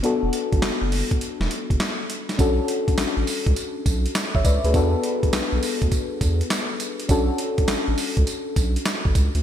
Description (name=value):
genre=R&B, new jack swing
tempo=102 BPM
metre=4/4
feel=swing 66% on 16ths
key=unclear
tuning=A4 = 440 Hz
part: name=mellow FM electric piano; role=accompaniment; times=0.0-9.4 s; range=B3 to E5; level=-25 LUFS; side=left 3 dB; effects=chorus
part: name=boom bap sampler-style drum kit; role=drums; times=0.0-9.4 s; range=handclaps, hi-hat, kick drum, snare drum, tambourine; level=-23 LUFS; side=right 1 dB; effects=gated reverb
part: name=round analog bass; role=bass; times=0.2-9.4 s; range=E1 to E2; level=-23 LUFS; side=right 1 dB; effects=none
room=light reverb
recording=bright 1980s-style digital production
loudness=-20 LUFS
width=side -10 dB against mid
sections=0.0-2.4 A section; 2.4-9.4 B section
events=none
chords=0.0 E9sus4 (rootless); 2.4 Bm7; 4.7 E7sus4; 7.1 Bm7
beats=| 0.04 0.62 1.21 1.80 | 2.39 2.98 3.56 4.15 | 4.74 5.33 5.92 6.51 | 7.09 7.68 8.27 8.86